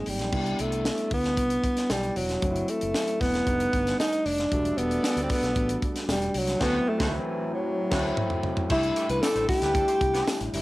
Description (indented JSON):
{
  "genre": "polished 1980s jazz-funk pop",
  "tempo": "115 BPM",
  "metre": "4/4",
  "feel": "straight",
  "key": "unclear",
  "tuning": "A4 = 440 Hz",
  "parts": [
    { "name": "warm alto saxophone", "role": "melody", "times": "0.0-10.5 s", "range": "Eb3 to B4", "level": "-26 LUFS", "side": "equal", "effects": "plate reverb" },
    { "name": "overdriven tine electric piano", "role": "accompaniment", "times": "0.0-10.6 s", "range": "Gb3 to F#4", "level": "-32 LUFS", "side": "left 1 dB", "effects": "lush chorus, plate reverb" },
    { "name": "mellow fretless electric bass", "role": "bass", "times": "0.0-10.6 s", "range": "E1 to D2", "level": "-33 LUFS", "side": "equal", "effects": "none" },
    { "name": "tight funk drum kit", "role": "drums", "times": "0.1-10.6 s", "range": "crash cymbal, hi-hat, kick drum, snare drum, toms", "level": "-30 LUFS", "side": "equal", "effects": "none" },
    { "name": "tambourine", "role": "percussion", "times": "0.9-10.4 s", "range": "none", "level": "-43 LUFS", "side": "right 5 dB", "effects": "none" },
    { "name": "warm horn section", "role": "second line", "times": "4.5-10.2 s", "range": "E3 to E5", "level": "-36 LUFS", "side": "right 2 dB", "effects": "plate reverb" }
  ],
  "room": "moderate studio reverb, RT60 0.6 s",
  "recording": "home recording on cassette",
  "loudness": "-23 LUFS",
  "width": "side -18 dB against mid",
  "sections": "0.3-8.7 A section; 8.7-10.6 B section",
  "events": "drum fill 6.6-8.7; band accent 6.6-8.7",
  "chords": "0.3 Cmaj9; 2.4 F#m7b5; 3.5 F13; 4.5 Em11; 6.6 D9; 8.7 C69",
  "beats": "| 0.33 0.85 1.38 1.90 | 2.42 2.95 3.47 4.00 | 4.52 5.04 5.57 6.09 | 6.61 7.14 7.66 8.18 | 8.71 9.23 9.75 10.28"
}